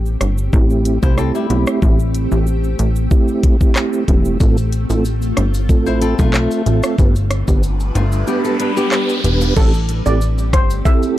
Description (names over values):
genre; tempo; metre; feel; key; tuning
dancehall; 93 BPM; 4/4; straight; A minor; A4 = 440 Hz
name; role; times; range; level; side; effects
granular cloud pad; sustained chords; 0.0-11.2 s; G3 to B4; -26 LUFS; equal; built-in reverb, sidechain pumping
plucky analog bass; bass; 0.0-10.8 s; E1 to C2; -17 LUFS; equal; none
island pop drum kit; drums; 0.1-11.2 s; crash cymbal, handclaps, hi-hat, kick drum, rim click, shaker; -15 LUFS; equal; none
mellow tonewheel organ; accompaniment; 0.5-11.2 s; A3 to B4; -20 LUFS; right 4 dB; chorus vibrato, stopped rotary speaker
flamenco guitar; arpeggios; 1.0-9.5 s; G3 to C5; -23 LUFS; left 8 dB; none
maracas and timbales; percussion; 4.4-11.2 s; none; -35 LUFS; left 5 dB; none
riser; sound effects; 7.6-9.6 s; none; -26 LUFS; right 1 dB; none
steel pan; melody; 9.6-11.0 s; A4 to E5; -22 LUFS; right 2 dB; digital delay
room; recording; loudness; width
little or no reverb; dark, warm production; -13 LUFS; side -14 dB against mid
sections
0.0-9.6 A section; 9.6-11.2 B section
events
riser 7.6-9.6; kick muted 8.3-9.6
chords
0.0 Am7; 4.4 F; 7.0 G; 9.6 Am7